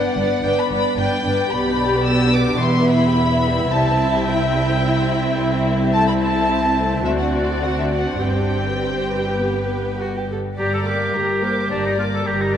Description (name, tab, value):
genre	quick classical-period movement for symphony orchestra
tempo	108 BPM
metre	4/4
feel	rubato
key	G major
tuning	A4 = 440 Hz
part	warm chamber violin section	melody	0.0-12.5 s	D5 to E6	-24 LUFS	left 1 dB	none
part	warm chamber violin section	second line	0.0-12.6 s	G3 to E5	-24 LUFS	left 2 dB	none
part	warm chamber viola section	accompaniment	0.0-12.6 s	G3 to Bb4	-22 LUFS	equal	none
part	warm chamber double bass section	bass	0.2-12.6 s	E1 to D2	-26 LUFS	right 3 dB	none
part	warm symphonic cello section	bass	0.2-12.6 s	C2 to B2	-24 LUFS	equal	none
part	clear oboe	second line	10.6-12.6 s	D4 to A4	-22 LUFS	right 1 dB	none
room	wet concert hall reverb, RT60 2.5 s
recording	nothing above 10.3 kHz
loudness	-17 LUFS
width	side -9 dB against mid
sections	0.0-10.6 A section; 10.6-12.6 B section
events	none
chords	0.0 G; 1.5 G/B; 2.6 Em; 3.7 C; 7.0 D7; 8.2 G; 10.6 Gm